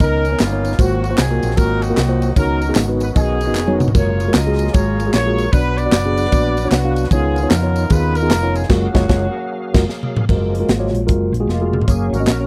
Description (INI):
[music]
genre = uptempo gospel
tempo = 152 BPM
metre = 4/4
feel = swing 63% on 8ths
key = F# major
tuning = A4 = 440 Hz
[part]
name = warm horn section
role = melody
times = 0.0-9.9 s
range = A#3 to D#5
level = -25 LUFS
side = equal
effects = none
[part]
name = mellow tine electric piano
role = accompaniment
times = 0.0-12.5 s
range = G#2 to E#5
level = -23 LUFS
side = equal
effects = none
[part]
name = bright tonewheel organ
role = sustained chords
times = 0.0-12.5 s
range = D#3 to E#5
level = -29 LUFS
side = equal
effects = fast rotary speaker, overdrive, chorus vibrato
[part]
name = hollow-body short-scale fingered electric bass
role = bass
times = 0.0-12.5 s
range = E#1 to E#2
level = -22 LUFS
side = equal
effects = none
[part]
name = crisp fusion drum kit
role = drums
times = 0.0-12.4 s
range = crash cymbal, hi-hat, kick drum, ride cymbal, snare drum, splash cymbal, toms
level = -19 LUFS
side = equal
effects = none
[part]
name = tambourine and handclaps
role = percussion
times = 0.0-8.6, 11.9-12.4 s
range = none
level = -32 LUFS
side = equal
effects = none
[part]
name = dark French horn section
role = sustained chords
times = 10.3-11.9 s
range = E#3 to E#4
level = -32 LUFS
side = equal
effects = none
[sound]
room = little or no reverb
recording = dry, close 1970s-style studio recording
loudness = -17 LUFS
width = mono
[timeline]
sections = 0.0-10.3 A section; 10.3-11.9 B section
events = drum fill 3.5-3.9, 9.9-10.3, 11.5-11.9; band accent 8.7-10.3; tonewheel organ solo 10.3-11.9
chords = 0.0 Bmaj9; 0.8 G#13; 2.4 C#9sus4; 3.9 F#maj9; 5.5 Bm; 7.1 C#9; 8.7 F#maj9; 11.9 F#